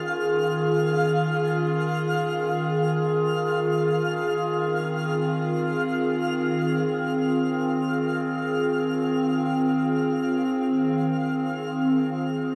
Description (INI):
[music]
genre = ambient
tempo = free time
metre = none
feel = none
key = unclear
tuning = A4 = 442 Hz
[part]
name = warbly tape-like pad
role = sustained chords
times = 0.0-12.6 s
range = Eb3 to Ab4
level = -25 LUFS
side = equal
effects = chorus, built-in reverb, phaser, shimmer reverb
[part]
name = twinkling granular texture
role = texture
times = 0.0-12.6 s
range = F5 to F6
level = -34 LUFS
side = equal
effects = built-in reverb, shimmer reverb
[sound]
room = wet huge ambient reverb, RT60 8.2 s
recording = dark, warm production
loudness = -24 LUFS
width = mono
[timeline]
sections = 0.0-12.6 A section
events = none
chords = 0.0 Eb9sus4; 3.3 Fm/Eb